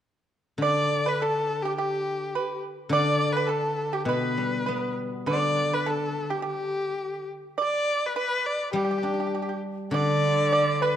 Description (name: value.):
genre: chinese traditional, Chinese chamber ensemble.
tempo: 103 BPM.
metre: 2/4.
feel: rubato.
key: unclear.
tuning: A4 = 440 Hz.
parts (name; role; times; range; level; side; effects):
clear erhu; melody; 0.6-11.0 s; G4 to D5; -27 LUFS; left 1 dB; none.
pipa; second line; 0.6-11.0 s; G4 to D5; -30 LUFS; right 5 dB; none.
guzheng; accompaniment; 0.6-11.0 s; B2 to D4; -29 LUFS; left 2 dB; none.
breathy bright low xiao; second line; 9.9-11.0 s; B4 to D5; -28 LUFS; left 2 dB; none.
rich cello; second line; 9.9-11.0 s; D3; -29 LUFS; right 6 dB; none.
room: moderate concert hall reverb, RT60 2.0 s.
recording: dark, warm production.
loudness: -24 LUFS.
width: side -10 dB against mid.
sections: 0.6-9.9 A section; 9.9-11.0 B section.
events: none.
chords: none.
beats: | 0.61 1.20 | 1.78 2.35 | 2.92 3.49 | 4.08 4.68 | 5.28 5.87 | 6.45 7.03 | 7.59 8.17 | 8.75 9.33 | 9.93 10.52.